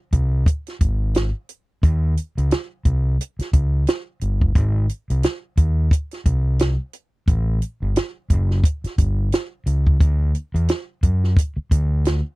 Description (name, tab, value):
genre	lush 1970s-style soul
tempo	88 BPM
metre	4/4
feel	swing 58% on 16ths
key	unclear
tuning	A4 = 440 Hz
part	overdriven fingered electric bass	bass	0.1-12.2 s	Gb1 to F#2	-19 LUFS	equal	none
part	compact cocktail drum kit	drums	0.1-12.2 s	hi-hat, kick drum, snare drum	-18 LUFS	equal	none
room	little or no reverb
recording	dry, close 1970s-style studio recording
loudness	-18 LUFS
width	side -22 dB against mid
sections	0.0-12.4 A section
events	none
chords	none